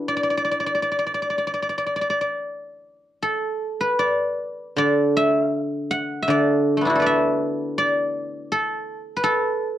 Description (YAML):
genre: chinese traditional, Chinese solo plucked strings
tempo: 74-83 BPM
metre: 4/4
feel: rubato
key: D gong mode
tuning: A4 = 436 Hz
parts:
  - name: guzheng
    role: solo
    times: 0.0-9.8 s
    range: D3 to F#5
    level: -20 LUFS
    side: equal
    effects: none
room: little or no reverb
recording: dry, close 1970s-style studio recording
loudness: -20 LUFS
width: side -12 dB against mid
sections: 0.0-3.2 A section; 3.2-9.8 B section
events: none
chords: none